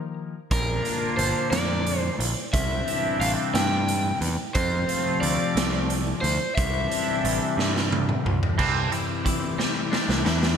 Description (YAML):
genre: indie rock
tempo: 60 BPM (dotted quarters)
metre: 6/8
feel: straight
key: unclear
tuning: A4 = 440 Hz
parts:
  - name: overdriven semi-hollow guitar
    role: melody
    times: 0.0-8.2 s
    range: Bb4 to G5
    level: -28 LUFS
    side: equal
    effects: ping-pong delay
  - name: twelve-string electric guitar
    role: riff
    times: 0.0-10.6 s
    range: F2 to G4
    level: -29 LUFS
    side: left 6 dB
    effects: wide subtle chorus
  - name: twangy electric guitar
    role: riff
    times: 0.5-10.6 s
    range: E3 to G4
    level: -32 LUFS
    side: right 6 dB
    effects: lush chorus, ping-pong delay
  - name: growling picked electric bass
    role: bass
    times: 0.5-10.5 s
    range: G1 to G2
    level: -27 LUFS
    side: right 1 dB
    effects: overdrive
  - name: raw garage drum kit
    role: drums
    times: 0.5-10.6 s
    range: crash cymbal, hi-hat, kick drum, snare drum, toms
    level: -26 LUFS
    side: right 1 dB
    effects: gated reverb
  - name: overdriven combo organ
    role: sustained chords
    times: 8.6-10.6 s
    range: E4 to G5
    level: -36 LUFS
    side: left 1 dB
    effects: none
room: moderate plate reverb, RT60 2.8 s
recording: bright 1980s-style digital production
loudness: -22 LUFS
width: side -7 dB against mid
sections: 0.0-8.6 A section; 8.6-10.6 B section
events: drum fill 7.6-8.6, 9.6-10.6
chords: 0.0 Ebadd9; 0.5 Bb; 2.5 Cadd9; 4.6 F; 6.6 Cadd9